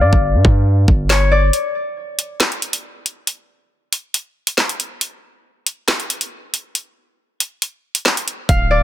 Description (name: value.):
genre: hip hop, drill.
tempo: 138 BPM.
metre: 4/4.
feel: half-time.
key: unclear.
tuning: A4 = 441 Hz.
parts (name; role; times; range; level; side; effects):
concert harp; melody; 0.0-3.2, 8.5-8.8 s; C#5 to F5; -18 LUFS; left 3 dB; low-pass filter, digital delay.
hard-hitting 808-style bass; bass; 0.0-1.5, 8.5-8.8 s; D1 to G2; -14 LUFS; equal; none.
drill drum kit; drums; 0.1-8.6 s; handclaps, hi-hat, kick drum, snare drum; -17 LUFS; equal; none.
room: little or no reverb.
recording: dense, heavily limited modern master.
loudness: -16 LUFS.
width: side -12 dB against mid.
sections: 0.0-8.8 A section.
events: break 0.0-1.5, 1.5-8.5; filter sweep on harp 0.0-1.5.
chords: 0.0 G5; 1.5 N.C..